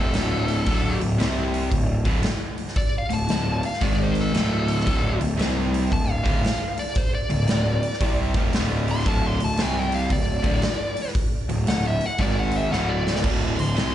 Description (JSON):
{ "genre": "blues rock power trio and southern rock", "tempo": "114 BPM", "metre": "4/4", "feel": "swing 65% on 8ths", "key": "unclear", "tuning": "A4 = 435 Hz", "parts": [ { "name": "nasal lead guitar with a parked wah", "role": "melody", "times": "0.0-13.9 s", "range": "A4 to C6", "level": "-29 LUFS", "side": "left 1 dB", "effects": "overdrive, slapback echo, digital delay" }, { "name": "cranked stack guitar", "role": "riff", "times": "0.0-13.9 s", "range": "D2 to C4", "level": "-26 LUFS", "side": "equal", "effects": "overdrive, spring reverb" }, { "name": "fuzz picked electric bass", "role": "bass", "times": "0.0-13.9 s", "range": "D1 to C2", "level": "-25 LUFS", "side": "equal", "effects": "overdrive" }, { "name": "big rock drum kit", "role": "drums", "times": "0.1-13.9 s", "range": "crash cymbal, hi-hat, kick drum, snare drum", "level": "-25 LUFS", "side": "equal", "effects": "none" } ], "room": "small room ambience", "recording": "live gig heard through the venue's PA, club reverb, nothing above 10.6 kHz", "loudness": "-20 LUFS", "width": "side -11 dB against mid", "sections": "0.0-13.2 A section", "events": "lead electric guitar solo 0.0-13.9; drum fill 12.7-13.2", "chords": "0.0 D5; 1.2 C5; 1.7 D5; 3.8 G#5; 4.3 D5; 5.4 C5; 5.9 D5; 9.6 C5; 10.1 D5; 12.2 G#5; 12.7 D5" }